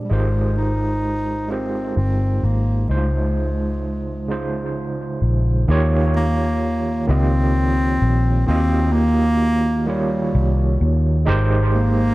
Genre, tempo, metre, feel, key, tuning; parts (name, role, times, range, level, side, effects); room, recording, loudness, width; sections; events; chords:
slow six-eight R&B; 43 BPM (dotted quarters); 6/8; straight; A4 = 440 Hz
mellow bass clarinet; melody; 0.0-12.1 s; G3 to Eb4; -22 LUFS; equal; analog delay
overdriven tine electric piano; accompaniment; 0.0-12.1 s; Bb2 to Eb5; -24 LUFS; right 2 dB; medium tremolo, analog delay
vintage muted fingered electric bass; bass; 0.0-12.1 s; G1 to Eb2; -19 LUFS; equal
light reverb, small room ambience; echo-heavy mix; -17 LUFS; side -19 dB against mid
0.0-5.7 A section; 5.7-12.1 B section
0.1 Abmaj13; 2.9 Dbmaj9; 5.7 Eb7; 11.3 Abmaj9